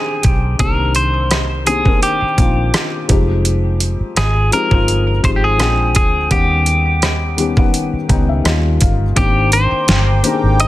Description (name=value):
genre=contemporary R&B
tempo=84 BPM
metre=4/4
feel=swing 54% on 16ths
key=unclear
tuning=A4 = 441 Hz
part: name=semi-hollow electric guitar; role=melody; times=0.0-10.7 s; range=G4 to Eb5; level=-18 LUFS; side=equal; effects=tape echo
part: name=felt-muted upright piano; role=accompaniment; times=0.0-10.7 s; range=D3 to G5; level=-20 LUFS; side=left 4 dB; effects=none
part: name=vintage muted fingered electric bass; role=bass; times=0.2-10.7 s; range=F1 to Eb2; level=-16 LUFS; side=equal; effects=none
part: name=detuned 8-bit digital drum machine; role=drums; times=0.2-10.7 s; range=hi-hat, kick drum, rim click, snare drum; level=-16 LUFS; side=equal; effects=none
part: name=warm analog pad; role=sustained chords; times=9.2-10.7 s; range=C5 to D6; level=-22 LUFS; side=equal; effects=chorus
room=digital ambience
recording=dense, heavily limited modern master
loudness=-12 LUFS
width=side -15 dB against mid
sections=0.0-9.2 A section; 9.2-10.7 B section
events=felt piano fill 7.7-9.2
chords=0.0 Abmaj9#11; 0.6 Cm9; 3.1 Fm9; 5.6 Bb13; 6.3 Eb7alt; 8.5 Eb9; 9.2 Abmaj9#11